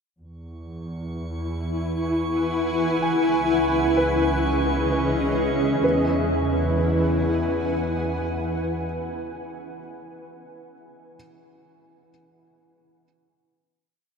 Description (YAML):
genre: ambient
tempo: 64 BPM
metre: 3/4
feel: straight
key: E major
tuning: A4 = 440 Hz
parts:
  - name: granular cloud pad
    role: sustained chords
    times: 1.4-9.3 s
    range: C#4 to G#5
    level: -24 LUFS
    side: equal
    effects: built-in reverb
  - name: dark chamber double bass section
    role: bass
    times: 0.2-8.8 s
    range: C#2 to E2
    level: -28 LUFS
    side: right 1 dB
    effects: none
  - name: bowed-like drone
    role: drone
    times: 1.6-8.8 s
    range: E3 to E4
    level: -30 LUFS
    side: left 2 dB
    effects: built-in reverb
  - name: drifting glass-harmonics texture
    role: texture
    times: 1.1-5.9 s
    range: C#6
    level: -36 LUFS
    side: right 2 dB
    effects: chorus, built-in reverb
  - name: felt-muted upright piano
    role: arpeggios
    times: 3.0-11.2 s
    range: B4 to G#5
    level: -29 LUFS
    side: right 1 dB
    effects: ping-pong delay
room: wet cathedral reverb, RT60 6.3 s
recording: in a vast, echoing space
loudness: -21 LUFS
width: side -6 dB against mid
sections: 0.2-5.8 A section; 5.8-8.6 final chord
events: fade-in on felt piano 0.2-5.8; fade-in on synth texture 0.2-5.8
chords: 0.2 E; 3.0 C#m7; 5.8 E